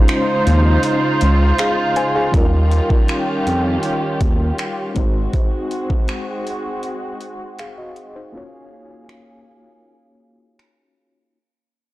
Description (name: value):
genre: contemporary R&B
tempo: 80 BPM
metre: 4/4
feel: straight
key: unclear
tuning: A4 = 440 Hz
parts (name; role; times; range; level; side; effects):
- FM electric piano with tremolo; accompaniment; 0.0-11.4 s; G3 to Ab5; -23 LUFS; left 2 dB; low-pass filter
- dark studio string section; sustained chords; 0.0-11.3 s; Db3 to F5; -22 LUFS; right 2 dB; sidechain pumping, low-pass filter
- trap drum kit; drums; 0.1-10.8 s; finger snaps, hi-hat, kick drum; -18 LUFS; equal; soft clipping on snare
- smooth gliding synth bass; bass; 0.5-5.3 s; Ab1 to F2; -15 LUFS; equal; none
room: digital ambience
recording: blown-out, overdriven recording, overdrive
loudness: -15 LUFS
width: side -17 dB against mid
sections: 0.0-11.3 A section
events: fade-out 0.0-11.3; filter sweep 0.0-11.3; break 8.3-11.3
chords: 0.0 Dbmaj9; 2.3 Eb9; 5.0 Ab7; 8.3 Gbmaj7/Bb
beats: 0.09 0.83 1.58 | 2.33 3.08 3.83 4.58 | 5.33 6.08 6.83 7.58 | 8.34 9.09 9.84 10.59